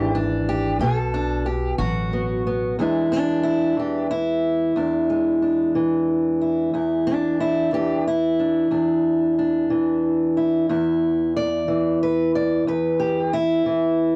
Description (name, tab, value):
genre	acoustic country blues, solo or duo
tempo	61 BPM (dotted quarters)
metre	12/8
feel	straight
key	E mixolydian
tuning	A4 = 440 Hz
part	fingerpicked steel-string acoustic guitar	melody	0.0-14.2 s	E2 to D5	-21 LUFS	equal	cassette tape
part	upright bass	bass	0.0-2.7 s	G#1 to B1	-29 LUFS	equal	none
room	light reverb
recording	home recording on cassette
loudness	-21 LUFS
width	mono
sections	0.0-2.8 A section; 2.8-14.2 A section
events	none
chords	0.0 E7; 0.8 B5; 2.8 E7